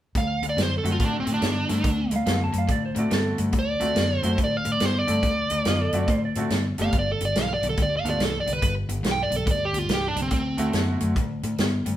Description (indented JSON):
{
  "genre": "electric blues shuffle",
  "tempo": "142 BPM",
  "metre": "4/4",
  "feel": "swing 64% on 8ths",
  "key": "D mixolydian",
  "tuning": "A4 = 441 Hz",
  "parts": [
    { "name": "vintage muted fingered electric bass", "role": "bass", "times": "0.1-12.0 s", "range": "F#1 to A2", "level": "-29 LUFS", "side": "equal", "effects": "none" },
    { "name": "natural country drum kit", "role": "drums", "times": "0.1-11.9 s", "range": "hi-hat, kick drum, snare drum", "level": "-27 LUFS", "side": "equal", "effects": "none" },
    { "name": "dark smooth lead guitar", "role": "melody", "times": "0.2-10.7 s", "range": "C4 to G5", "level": "-26 LUFS", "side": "right 2 dB", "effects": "overdrive" },
    { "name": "crunchy overdriven guitar", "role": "riff", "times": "0.2-12.0 s", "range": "G2 to B3", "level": "-28 LUFS", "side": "left 2 dB", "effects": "none" },
    { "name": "bright upright piano", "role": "accompaniment", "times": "0.8-11.1 s", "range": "A3 to A4", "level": "-32 LUFS", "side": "right 2 dB", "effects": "none" },
    { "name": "electric slide guitar", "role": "second line", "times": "2.2-6.6 s", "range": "F4 to A5", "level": "-31 LUFS", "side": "right 4 dB", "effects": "none" }
  ],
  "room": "moderate stone room reverb, RT60 0.9 s",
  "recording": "band playing live in one room",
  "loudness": "-21 LUFS",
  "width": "side -12 dB against mid",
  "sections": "0.2-12.0 A section",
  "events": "none",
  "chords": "0.2 D7; 6.9 G; 10.3 D7"
}